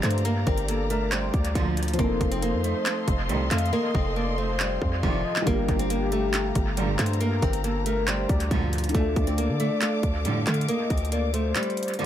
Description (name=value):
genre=hip hop, trap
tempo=138 BPM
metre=4/4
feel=half-time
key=G minor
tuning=A4 = 440 Hz
part: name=nylon-string guitar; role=melody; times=0.0-12.1 s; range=F3 to C4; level=-29 LUFS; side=right 1 dB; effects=dub echo
part: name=warm velvety synth lead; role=second line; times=0.0-12.1 s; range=G4 to F5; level=-32 LUFS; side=left 3 dB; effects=chorus, dub echo
part: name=dark grand piano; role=accompaniment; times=0.0-12.1 s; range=D3 to A4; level=-34 LUFS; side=left 2 dB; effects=dub echo
part: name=warm symphonic string section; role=sustained chords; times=0.0-12.1 s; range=G4 to D6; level=-35 LUFS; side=left 1 dB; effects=none
part: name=warm symphonic string section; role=stabs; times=0.0-12.1 s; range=F2 to F3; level=-35 LUFS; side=right 5 dB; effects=none
part: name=hard-hitting 808-style bass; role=bass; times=0.0-11.5 s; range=F1 to D3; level=-27 LUFS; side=equal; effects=none
part: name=trap drum kit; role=drums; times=0.0-12.0 s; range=handclaps, hi-hat, kick drum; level=-28 LUFS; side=equal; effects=overdrive, dub echo
room=studio ambience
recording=echo-heavy mix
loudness=-22 LUFS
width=side -11 dB against mid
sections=0.0-12.1 A section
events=hi-hats muted 3.7-5.5; kick muted 11.6-12.1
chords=0.0 Gm7; 2.0 F7; 5.5 Gm7; 8.9 Dm